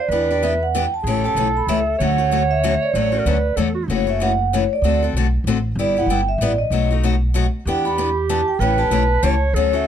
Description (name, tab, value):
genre	acoustic string swing (jazz manouche)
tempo	190 BPM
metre	3/4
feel	swing 58% on 8ths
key	D major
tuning	A4 = 439 Hz
part	vibraphone with medium mallets	melody	0.0-9.9 s	C#5 to B5	-21 LUFS	right 2 dB	none
part	breathy clarinet	second line	0.0-3.9, 7.7-9.9 s	F#4 to C#5	-23 LUFS	right 5 dB	none
part	picked steel-string acoustic guitar	accompaniment	0.1-9.9 s	B2 to A4	-22 LUFS	left 7 dB	none
part	upright bass	bass	0.1-9.9 s	F#1 to E2	-21 LUFS	equal	none
room	light reverb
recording	dark, warm production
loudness	-16 LUFS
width	side -9 dB against mid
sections	0.0-3.9 A section; 3.9-9.9 B section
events	none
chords	0.1 Em7; 1.0 A7; 2.0 Dmaj7; 3.9 F#m7; 4.8 D7; 5.8 G69; 6.7 B7; 7.7 Em7; 8.6 A7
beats	| 0.10 0.41 0.73 | 1.05 1.36 1.68 | 1.99 2.31 2.62 | 2.94 3.25 3.57 | 3.88 4.20 4.51 | 4.83 5.14 5.46 | 5.77 6.09 6.40 | 6.72 7.03 7.35 | 7.66 7.98 8.29 | 8.61 8.92 9.24 | 9.55